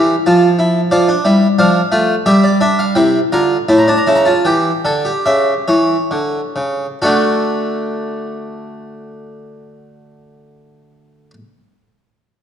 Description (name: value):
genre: classical, baroque-style 3-part fugue for harpsichord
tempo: 63-92 BPM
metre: 4/4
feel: straight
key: unclear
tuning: A4 = 440 Hz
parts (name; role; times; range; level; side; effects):
- harpsichord; solo; 0.0-11.3 s; A2 to Bb5; -12 LUFS; equal; none
room: wet recital hall reverb, RT60 1.4 s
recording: dark, warm production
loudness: -12 LUFS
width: side -9 dB against mid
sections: 0.0-7.0 A section; 7.0-10.8 B section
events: slowing down 0.0-7.0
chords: 0.0 Dm (rootless); 0.9 Dm/F; 2.3 Em7b5/G; 3.7 A7; 7.0 D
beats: 0.25 | 0.91 1.58 2.26 2.96 | 3.69 4.45 5.26 6.11 | 7.02 7.97 8.92 9.87